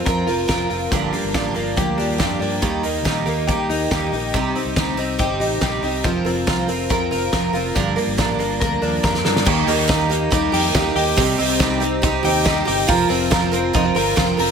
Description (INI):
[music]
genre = jangly indie pop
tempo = 140 BPM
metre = 4/4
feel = straight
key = C minor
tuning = A4 = 440 Hz
[part]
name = picked twelve-string acoustic guitar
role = accompaniment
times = 0.0-14.5 s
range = G2 to Bb4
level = -21 LUFS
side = right 7 dB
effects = none
[part]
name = direct-recorded clean electric guitar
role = arpeggios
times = 0.0-14.5 s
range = G2 to Bb4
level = -22 LUFS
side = left 6 dB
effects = analog chorus, ping-pong delay
[part]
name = fingered electric bass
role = bass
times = 0.0-14.5 s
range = F1 to Eb3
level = -27 LUFS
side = left 1 dB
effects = none
[part]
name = loose indie drum kit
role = drums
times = 0.1-14.5 s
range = crash cymbal, hi-hat, kick drum, snare drum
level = -22 LUFS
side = equal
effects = none
[sound]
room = moderate echo chamber reverb, RT60 1.4 s, studio reverb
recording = none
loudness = -17 LUFS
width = side -6 dB against mid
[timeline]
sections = 0.0-9.5 A section; 9.5-14.5 B section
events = drum fill 9.0-9.5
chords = 0.0 Fsus4; 0.9 Gm7; 2.6 Eb; 4.3 Cm; 6.0 Fsus4; 7.8 Gm7; 9.5 Eb; 11.2 Cm; 12.9 Fsus4